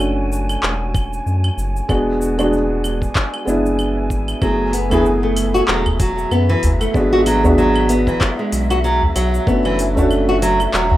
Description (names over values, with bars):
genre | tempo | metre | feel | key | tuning
organic downtempo | 95 BPM | 4/4 | swing 57% on 16ths | F# minor | A4 = 442 Hz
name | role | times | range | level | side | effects
felt-muted upright piano | accompaniment | 0.0-11.0 s | G#3 to G#4 | -19 LUFS | equal | sidechain pumping, digital delay, shimmer reverb
round analog bass | bass | 0.0-11.0 s | E1 to F#2 | -21 LUFS | equal | sidechain pumping
deep house drum kit | drums | 0.0-10.9 s | claves, handclaps, hi-hat, shaker | -24 LUFS | equal | overdrive
wind-like tuned noise texture | texture | 0.0-11.0 s | E5 to G#5 | -29 LUFS | right 1 dB | built-in reverb, shimmer reverb
electronic kick drum | drums | 0.9-9.6 s | none | -19 LUFS | equal | overdrive
nylon-string guitar | arpeggios | 4.4-11.0 s | E3 to F#4 | -18 LUFS | equal | digital delay, shimmer reverb
udu | percussion | 4.9-11.0 s | none | -18 LUFS | equal | none
room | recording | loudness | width
wet small room reverb, RT60 0.5 s | rough home demo mix | -14 LUFS | side -14 dB against mid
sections
0.0-11.0 A section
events
none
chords
0.0 Dmaj9#11; 1.9 E7; 4.4 F#m11; 6.9 G#m7b5; 9.5 Bm7/F# (rootless)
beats
0.00 0.63 1.26 | 1.89 2.53 3.16 3.79 | 4.42 5.05 5.68 6.32 | 6.95 7.58 8.21 8.84 | 9.47 10.11 10.74